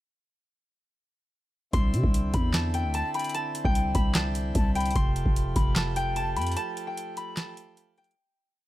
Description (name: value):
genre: hip hop, trap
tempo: 149 BPM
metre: 4/4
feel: half-time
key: C major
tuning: A4 = 440 Hz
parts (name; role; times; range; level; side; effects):
- concert harp; melody; 1.7-8.7 s; G5 to C6; -32 LUFS; left 1 dB; none
- pipe organ, plenum; sustained chords; 1.7-8.1 s; D3 to G4; -37 LUFS; right 1 dB; none
- growling 808-style bass; bass; 1.7-6.6 s; F1 to C3; -27 LUFS; equal; none
- booming analog drum machine; drums; 1.7-8.2 s; handclaps, hi-hat, kick drum, snare drum; -27 LUFS; equal; none
- mellow silver concert flute; second line; 2.9-6.6 s; G5 to B5; -37 LUFS; left 4 dB; digital delay
room: small room ambience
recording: none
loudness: -24 LUFS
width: side -15 dB against mid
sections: 1.7-8.2 hook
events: break 6.6-8.2; fade-out 6.6-8.2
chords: 1.7 Cadd9; 5.0 Fadd9